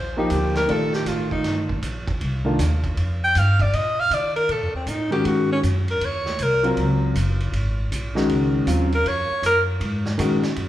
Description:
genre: modal jazz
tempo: 158 BPM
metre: 4/4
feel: swing 66% on 8ths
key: unclear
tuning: A4 = 440 Hz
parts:
  - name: bright alto saxophone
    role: melody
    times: 0.0-6.7, 8.9-9.6 s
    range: C4 to G5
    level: -22 LUFS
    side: equal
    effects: none
  - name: upright bass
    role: bass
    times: 0.0-10.7 s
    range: Gb1 to Eb3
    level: -23 LUFS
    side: equal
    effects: none
  - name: warm concert grand piano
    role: accompaniment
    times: 0.2-2.6, 5.1-10.4 s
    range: Db3 to D5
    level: -23 LUFS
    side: equal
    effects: none
  - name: vintage drum kit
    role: drums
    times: 0.3-10.7 s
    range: hi-hat, kick drum, ride cymbal, snare drum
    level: -31 LUFS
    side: right 2 dB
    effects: none
room: wet large studio reverb, RT60 1.3 s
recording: band playing live in one room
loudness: -19 LUFS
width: side -13 dB against mid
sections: 0.0-10.7 A section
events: alto saxophone solo 0.0-10.7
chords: 0.0 F13sus4; 5.2 Ab13sus4

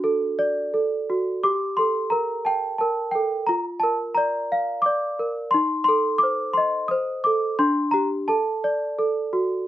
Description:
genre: children's music, lullaby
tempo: 88 BPM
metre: 3/4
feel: straight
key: G minor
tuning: A4 = 440 Hz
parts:
  - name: small celesta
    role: solo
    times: 0.0-9.7 s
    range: D4 to F#6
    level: -20 LUFS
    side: equal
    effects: none
room: light reverb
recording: close, detailed microphones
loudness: -20 LUFS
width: side -13 dB against mid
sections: 0.0-1.4 A section; 1.4-9.7 B section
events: none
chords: 0.0 D; 1.4 Gmadd9; 3.5 Bb; 5.5 Adim; 7.6 Gm/D; 8.3 D

